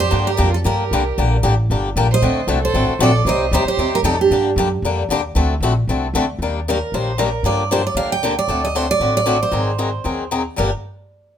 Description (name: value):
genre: acoustic string swing (jazz manouche)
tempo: 230 BPM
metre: 4/4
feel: swing 56% on 8ths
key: G minor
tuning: A4 = 439 Hz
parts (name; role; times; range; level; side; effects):
- picked steel-string acoustic guitar; melody; 0.0-4.4, 6.7-10.7 s; G4 to G5; -20 LUFS; right 3 dB; none
- warm violin; second line; 0.0-4.5 s; D4 to C5; -24 LUFS; right 9 dB; none
- upright bass; bass; 0.0-10.7 s; G1 to G2; -20 LUFS; equal; none
- picked swing-style acoustic guitar; accompaniment; 0.1-10.7 s; G2 to A4; -20 LUFS; left 4 dB; none
room: light reverb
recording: minimal, uncompressed stereo recording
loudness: -16 LUFS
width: side -9 dB against mid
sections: 0.0-6.4 A section; 6.4-10.6 B section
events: none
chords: 0.1 Gm; 2.2 D7b9; 3.3 Cm; 4.3 Gm; 5.4 D7; 6.4 Ebmaj7; 7.4 Gm7; 8.5 D7; 9.5 Ab7; 10.6 Gm7